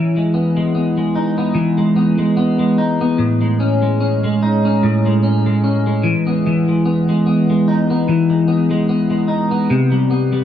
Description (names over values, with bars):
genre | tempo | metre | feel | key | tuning
indie pop | 74 BPM | 4/4 | swing 55% on 16ths | E major | A4 = 440 Hz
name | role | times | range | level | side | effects
clean electric guitar | solo | 0.0-10.4 s | A2 to D#4 | -14 LUFS | equal | lush chorus, warbly pitch drift, tape echo
room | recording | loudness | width
wet studio ambience, RT60 0.5 s | dark, warm production | -14 LUFS | side -10 dB against mid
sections
0.0-10.4 A section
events
none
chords
0.0 Emaj7; 3.2 Amaj7#11; 9.7 Cmaj7(no3)